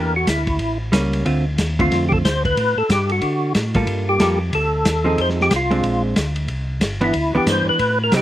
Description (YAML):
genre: soul jazz organ trio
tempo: 184 BPM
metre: 4/4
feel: swing 62% on 8ths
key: G minor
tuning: A4 = 441 Hz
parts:
  - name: percussive tonewheel organ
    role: melody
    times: 0.0-8.2 s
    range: E4 to C5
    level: -20 LUFS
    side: left 1 dB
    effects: slow rotary speaker, chorus vibrato, slapback echo
  - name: vintage hollow-body jazz guitar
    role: accompaniment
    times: 0.0-8.2 s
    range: D3 to A4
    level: -21 LUFS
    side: right 1 dB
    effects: slapback echo
  - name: mellow tonewheel organ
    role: bass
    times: 0.0-8.2 s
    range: G1 to D3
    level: -22 LUFS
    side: equal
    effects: overdrive, chorus vibrato, slow rotary speaker
  - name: vintage drum kit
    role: drums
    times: 0.3-8.2 s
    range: hi-hat, kick drum, ride cymbal, snare drum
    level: -23 LUFS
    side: equal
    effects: none
room: little or no reverb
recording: recorded outdoors, with no room sound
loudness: -16 LUFS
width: side -13 dB against mid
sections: 0.0-8.2 A section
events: none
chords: 0.0 Em7b5; 0.6 A7b9; 1.3 Dm7; 2.6 Gmaj9; 3.2 D; 3.9 Gm9; 5.2 Fm7; 5.8 Bb9; 6.5 Cmaj9